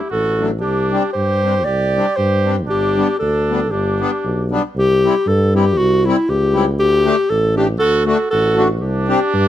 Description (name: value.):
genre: alpine folk, alpine dance band.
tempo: 117 BPM.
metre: 2/4.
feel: straight.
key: unclear.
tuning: A4 = 441 Hz.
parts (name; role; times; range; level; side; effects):
mellow clarinet; melody; 0.0-9.5 s; E4 to D5; -17 LUFS; left 1 dB; none.
warm trumpet; second line; 0.0-4.5, 7.8-9.5 s; D4 to G4; -23 LUFS; right 6 dB; none.
mellow tuba; bass; 0.1-9.5 s; G1 to G2; -19 LUFS; equal; none.
accordion; accompaniment; 0.4-9.2 s; F#3 to G4; -20 LUFS; left 3 dB; light tremolo tuning.
room: light reverb.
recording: none.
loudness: -14 LUFS.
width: side -12 dB against mid.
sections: 0.0-4.8 A section; 4.8-9.5 A section.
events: none.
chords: 0.0 D; 0.6 Csus2; 2.7 G; 4.8 C; 6.8 Dsus4; 7.8 D; 8.8 Csus2.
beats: 0.13 | 0.65 1.16 | 1.68 2.19 | 2.70 3.21 | 3.72 4.24 | 4.76 5.27 | 5.78 6.29 | 6.79 7.29 | 7.80 8.31 | 8.82 9.33.